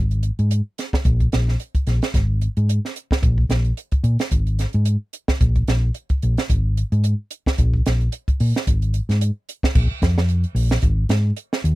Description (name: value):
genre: afrobeat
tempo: 110 BPM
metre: 4/4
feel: swing 55% on 16ths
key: unclear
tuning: A4 = 441 Hz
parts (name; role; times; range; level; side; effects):
- hollow-body short-scale fingered electric bass; bass; 0.0-11.8 s; Ab1 to Bb2; -18 LUFS; equal; none
- compact cocktail drum kit; drums; 0.1-11.8 s; crash cymbal, hi-hat, kick drum, snare drum; -21 LUFS; equal; none
room: little or no reverb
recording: dry, close 1970s-style studio recording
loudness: -18 LUFS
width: side -19 dB against mid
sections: 0.0-9.8 A section; 9.8-11.8 B section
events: none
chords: none